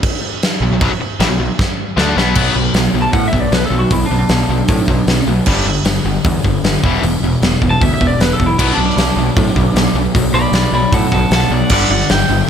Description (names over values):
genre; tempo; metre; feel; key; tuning
hard rock; 154 BPM; 4/4; straight; B minor; A4 = 439 Hz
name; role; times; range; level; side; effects
big rock drum kit; drums; 0.0-12.2 s; crash cymbal, hi-hat, kick drum, snare drum; -16 LUFS; equal; none
cranked stack guitar; riff; 0.6-12.5 s; E2 to D4; -21 LUFS; right 13 dB; overdrive
distorted electric guitar; riff; 0.6-12.5 s; E2 to D4; -19 LUFS; left 8 dB; overdrive
fuzz picked electric bass; bass; 0.6-12.4 s; E1 to A2; -18 LUFS; equal; overdrive
lightly driven lead guitar; melody; 3.0-5.3, 7.7-12.5 s; D4 to B5; -18 LUFS; right 1 dB; digital delay
room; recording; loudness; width
small room ambience; none; -12 LUFS; side -8 dB against mid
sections
0.0-2.4 A section; 2.4-12.5 B section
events
drum fill 1.6-2.4; lead electric guitar solo 2.4-12.5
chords
0.0 Bm; 5.5 G5; 6.8 E5; 8.6 Bm; 11.7 G5